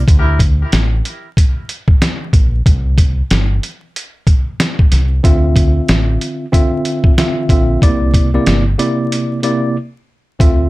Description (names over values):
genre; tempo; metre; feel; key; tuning
hip hop, boom-bap hip-hop; 93 BPM; 4/4; swing 60% on 16ths; D minor; A4 = 440 Hz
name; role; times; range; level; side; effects
tine electric piano; accompaniment; 0.0, 5.2-10.7 s; C3 to E5; -16 LUFS; equal; overdrive, fast stereo tremolo, cassette tape, high-pass filter, low-pass filter
deep dub fingered electric bass; bass; 0.0-10.7 s; G1 to D2; -14 LUFS; equal; none
trip hop sampler-style drum kit; drums; 0.1-10.6 s; hi-hat, kick drum, snare drum; -12 LUFS; equal; none
room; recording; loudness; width
light reverb; vinyl crackle; -11 LUFS; side -19 dB against mid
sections
0.1-10.7 A section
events
break 0.1-5.2, 9.8-10.4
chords
0.1 D5; 2.7 C5; 5.2 Dm9; 7.8 C9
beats
| 0.08 0.72 1.37 2.01 | 2.66 3.30 3.95 4.59 | 5.24 5.88 6.53 7.17 | 7.82 8.46 9.11 9.76 | 10.40